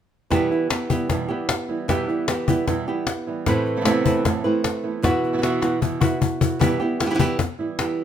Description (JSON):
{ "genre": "flamenco", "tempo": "152 BPM", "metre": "4/4", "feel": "straight", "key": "unclear", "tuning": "A4 = 440 Hz", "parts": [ { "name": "flamenco guitar", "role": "melody", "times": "0.3-8.0 s", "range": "A2 to B4", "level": "-23 LUFS", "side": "right 1 dB", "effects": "none" }, { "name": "flamenco guitar", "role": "stabs", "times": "0.3-8.0 s", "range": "E2 to F#4", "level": "-26 LUFS", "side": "right 5 dB", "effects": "none" }, { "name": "cajon", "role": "percussion", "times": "0.3-8.0 s", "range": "none", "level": "-23 LUFS", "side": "left 5 dB", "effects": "none" } ], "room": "light reverb", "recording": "minimal, uncompressed stereo recording", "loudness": "-20 LUFS", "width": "side -9 dB against mid", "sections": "0.3-8.0 A section", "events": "drum fill 5.4-6.6", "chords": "0.3 Em; 3.5 Amadd9; 5.0 Bsus4; 6.6 Em", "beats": "| 0.32 0.71 1.10 1.50 | 1.89 2.29 2.68 3.07 | 3.46 3.86 4.25 4.64 | 5.04 5.43 5.83 6.22 | 6.61 7.01 7.40 7.79" }